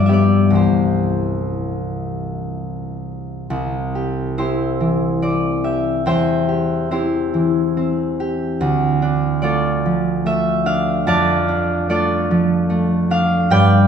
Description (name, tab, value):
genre	classical, solo harp piece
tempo	59-77 BPM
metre	3/4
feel	rubato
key	C major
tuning	A4 = 441 Hz
part	concert harp	solo	0.0-13.9 s	C2 to A5	-16 LUFS	equal	none
room	wet recital hall reverb, RT60 1.4 s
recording	recorded in a church or concert hall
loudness	-16 LUFS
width	side -7 dB against mid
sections	0.0-3.5 A section; 3.5-13.9 A section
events	none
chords	0.0 G7; 0.6 C; 6.1 C/E; 8.6 Dm; 11.1 Dm/F